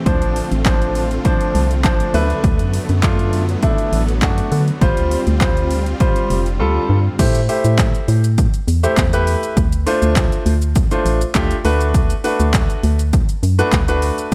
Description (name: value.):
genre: dance-pop.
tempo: 101 BPM.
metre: 4/4.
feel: straight.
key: unclear.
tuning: A4 = 442 Hz.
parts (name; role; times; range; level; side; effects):
supersaw chords; sustained chords; 0.0-7.2 s; D3 to F4; -28 LUFS; equal; sidechain pumping.
clear concert grand piano; accompaniment; 0.1-14.3 s; F3 to A5; -22 LUFS; equal; sidechain pumping.
organ-like FM bass; bass; 0.1-14.3 s; F1 to D3; -20 LUFS; equal; sidechain pumping.
punchy analog drum machine; drums; 0.1-14.3 s; crash cymbal, handclaps, hi-hat, kick drum, shaker; -20 LUFS; equal; none.
room: light reverb.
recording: none.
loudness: -16 LUFS.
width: mono.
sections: 0.0-7.2 A section; 7.2-14.3 B section.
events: grand piano fill 1.5-2.4; silent gap 6.6-7.2.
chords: 0.1 Dm7; 2.1 Bm7/D; 4.8 G7sus4; 7.2 Am7; 9.6 Dm7; 11.6 Bm7/D.